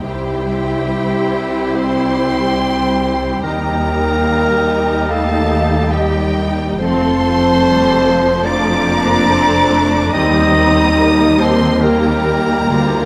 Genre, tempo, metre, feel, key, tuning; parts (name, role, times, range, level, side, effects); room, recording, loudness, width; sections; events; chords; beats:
cinematic, emotional film score for orchestra; 71 BPM; 4/4; rubato; A4 = 441 Hz
warm symphonic violin section; melody; 0.0-13.1 s; G5 to Eb6; -26 LUFS; equal
dark symphonic violin section; second line; 0.0-13.1 s; F4 to C5; -28 LUFS; equal
mellow hollow silver concert flute; second line; 0.0-13.1 s; Eb5 to Bb5; -24 LUFS; equal
warm clarinet; second line; 0.0-13.1 s; G4 to Eb5; -22 LUFS; equal
warm symphonic viola section; accompaniment; 0.0-13.1 s; F3 to E4; -23 LUFS; equal
dark French horn section; sustained chords; 0.0-13.1 s; G3 to Eb4; -22 LUFS; equal
concert harp; arpeggios; 0.0-13.1 s; C3 to C6; -29 LUFS; equal
rich symphonic cello section; bass; 0.0-13.1 s; C2 to F2; -24 LUFS; equal
rich symphonic double bass section; bass; 0.0-13.1 s; F1 to Eb2; -24 LUFS; equal
wet concert hall reverb, RT60 2.2 s; -15 LUFS; mono
0.0-13.1 A section
0.0 C; 3.4 Eb; 6.8 F; 10.1 Eb
| 0.04 0.88 1.76 2.60 | 3.43 4.28 5.10 5.92 | 6.80 7.63 8.46 9.29 | 10.14 10.98 11.82 12.67